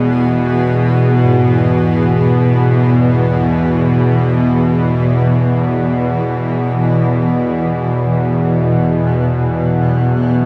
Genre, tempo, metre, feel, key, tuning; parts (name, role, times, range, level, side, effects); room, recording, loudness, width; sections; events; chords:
dark ambient drone; free time; E major; A4 = 439 Hz
granular cloud pad; sustained chords; 0.0-10.5 s; B2 to G#4; -23 LUFS; equal; built-in reverb, shimmer reverb
gamelan-type bossed gongs; arpeggios; 0.0-7.4 s; barely audible
bowed-like drone; drone; 0.0-10.5 s; E2 to B2; -14 LUFS; equal; built-in reverb
wet cathedral reverb, RT60 6.8 s; in a vast, echoing space; -14 LUFS; mono
0.0-10.5 A section
fade-in on ambient pad 0.0-10.5
0.0 E; 7.7 Bsus2